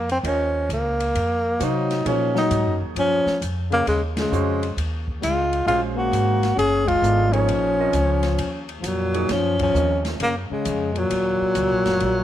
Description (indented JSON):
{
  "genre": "modal jazz",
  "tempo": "133 BPM",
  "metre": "4/4",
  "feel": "swing 66% on 8ths",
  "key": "Eb dorian",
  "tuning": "A4 = 445 Hz",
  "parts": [
    { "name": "breathy tenor saxophone", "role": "melody", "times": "0.0-12.2 s", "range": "F3 to Ab4", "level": "-22 LUFS", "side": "equal", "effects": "none" },
    { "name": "upright bass", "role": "bass", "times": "0.0-12.2 s", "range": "Gb1 to C3", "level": "-25 LUFS", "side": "equal", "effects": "none" },
    { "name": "open jazz drum kit", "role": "drums", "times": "0.1-12.1 s", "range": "hi-hat, kick drum, ride cymbal, snare drum", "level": "-33 LUFS", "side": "left 1 dB", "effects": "none" },
    { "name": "clear grand piano", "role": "accompaniment", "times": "0.2-10.4 s", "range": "Ab3 to F5", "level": "-30 LUFS", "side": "right 10 dB", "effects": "none" },
    { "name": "warm trombone", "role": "second line", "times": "1.6-12.2 s", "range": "Ab2 to Db4", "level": "-27 LUFS", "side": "left 9 dB", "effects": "none" }
  ],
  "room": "light reverb, studio ambience",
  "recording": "1960s-style stereo with parts hard left and right",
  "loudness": "-19 LUFS",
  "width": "side -12 dB against mid",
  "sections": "0.0-12.2 A section",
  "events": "band accent 4.1, 6.8, 9.5",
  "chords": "0.0 Ebm11"
}